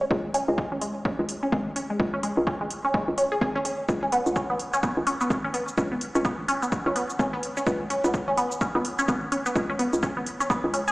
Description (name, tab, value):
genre	minimal techno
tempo	127 BPM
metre	4/4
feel	swing 60% on 16ths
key	unclear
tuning	A4 = 440 Hz
part	resonant blip pluck	riff	0.0-10.9 s	G#3 to G#4	-26 LUFS	equal	phaser, wide subtle chorus, sidechain pumping, digital delay
part	hollow knocking FM bass	bass	0.1-10.9 s	G#1 to C#2	-28 LUFS	equal	sidechain pumping
part	electronic kick drum	drums	0.1-10.6 s	none	-30 LUFS	equal	overdrive
part	electronic hi-hat and cabasa	drums	0.3-10.9 s	none	-36 LUFS	equal	overdrive
room	moderate lush hall reverb, RT60 2.2 s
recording	played on a big sound system in a bare room, large studio reverb, small speaker sound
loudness	-24 LUFS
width	side -20 dB against mid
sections	0.0-10.9 A section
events	none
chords	0.0 C#5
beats	| 0.11 0.58 1.05 1.52 | 2.00 2.47 2.94 3.41 | 3.89 4.36 4.83 5.30 | 5.78 6.25 6.72 7.19 | 7.67 8.14 8.61 9.08 | 9.55 10.03 10.50